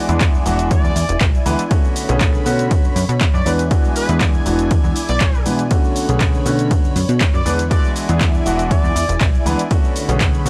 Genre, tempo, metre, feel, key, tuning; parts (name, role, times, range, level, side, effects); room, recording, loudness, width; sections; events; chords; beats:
filtered disco house; 120 BPM; 4/4; straight; A4 = 440 Hz
clear concert grand piano; accompaniment; 0.0-10.5 s; D3 to B4; -23 LUFS; equal; phaser, sidechain pumping
string machine, full ensemble; sustained chords; 0.0-10.5 s; D3 to B5; -28 LUFS; equal; ensemble chorus, sidechain pumping
plucky analog bass; bass; 0.1-10.5 s; E1 to B2; -22 LUFS; equal; sidechain pumping
punchy analog drum machine; drums; 0.1-10.5 s; cabasa, handclaps, hi-hat, ride cymbal; -28 LUFS; equal
electronic kick drum; drums; 0.2-10.3 s; -19 LUFS; equal
brilliant trumpet section; melody; 0.7-9.2 s; B4 to D5; -28 LUFS; equal; vintage 12-bit sampler grit, sidechain pumping
little or no reverb; dry, gritty hardware recording; -16 LUFS; mono
0.0-10.5 A section
0.0 E7; 1.7 Bm9; 3.5 E7; 5.7 Bm9; 7.5 E7; 9.7 Bm9
0.21 0.71 1.21 | 1.71 2.21 2.71 3.21 | 3.71 4.21 4.71 5.21 | 5.71 6.21 6.71 7.21 | 7.71 8.21 8.71 9.21 | 9.71 10.21